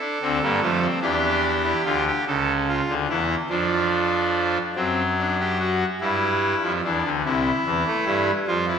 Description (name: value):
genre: classical, baroque-style 3-part fugue for pipe organ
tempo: 48 BPM (dotted quarters)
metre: 6/8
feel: straight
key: D minor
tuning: A4 = 441 Hz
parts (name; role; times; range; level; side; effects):
- pipe organ, trumpet; solo; 0.0-8.8 s; C2 to A4; -20 LUFS; equal; none
room: wet scoring stage reverb, RT60 1.6 s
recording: none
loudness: -20 LUFS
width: side -7 dB against mid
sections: 0.0-4.8 A section; 4.8-8.8 B section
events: none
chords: 0.0 Dm; 1.0 Dsus24; 2.3 A/C#; 3.5 Dm/F; 4.8 D7/F#; 6.0 G5; 7.3 C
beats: 1.03 | 2.27 3.51 | 4.76 6.01 | 7.26 8.49